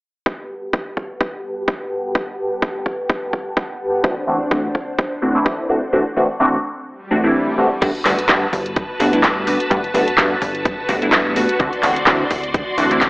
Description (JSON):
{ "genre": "filtered disco house", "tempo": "127 BPM", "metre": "4/4", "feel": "swing 55% on 16ths", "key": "G major", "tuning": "A4 = 439 Hz", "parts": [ { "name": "string machine, full ensemble", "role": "sustained chords", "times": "0.3-13.1 s", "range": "D4 to C6", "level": "-23 LUFS", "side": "equal", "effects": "ensemble chorus, sidechain pumping, low-pass filter" }, { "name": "electronic kick drum", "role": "drums", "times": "0.3-13.1 s", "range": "none", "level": "-22 LUFS", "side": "equal", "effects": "overdrive, high-pass filter on kick, high-pass filter on room" }, { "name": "funky polysynth comp", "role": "accompaniment", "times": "4.0-13.1 s", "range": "E3 to F#4", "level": "-18 LUFS", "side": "equal", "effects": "chorus, phaser, sidechain pumping, low-pass filter" }, { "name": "swell", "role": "sound effects", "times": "7.1-7.8 s", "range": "none", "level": "-26 LUFS", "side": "equal", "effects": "none" }, { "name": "plucky analog bass", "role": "bass", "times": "7.8-13.1 s", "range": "D1 to G2", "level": "-24 LUFS", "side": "equal", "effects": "sidechain pumping, low-pass filter" }, { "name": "house drum kit", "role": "drums", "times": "7.8-13.1 s", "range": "crash cymbal, handclaps, hi-hat", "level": "-18 LUFS", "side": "equal", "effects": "overdrive, sidechain pumping on hats, sidechain pumping on cymbals" } ], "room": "moderate echo chamber reverb, RT60 1.5 s, digital ambience", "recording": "AM radio sound", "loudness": "-16 LUFS", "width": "side -24 dB against mid", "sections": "0.3-7.8 A section; 7.8-13.1 B section", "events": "filter sweep 0.3-7.8; swell 7.1-7.8", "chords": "0.3 Gmaj9; 4.0 D7; 7.8 Gmaj9; 11.6 D7" }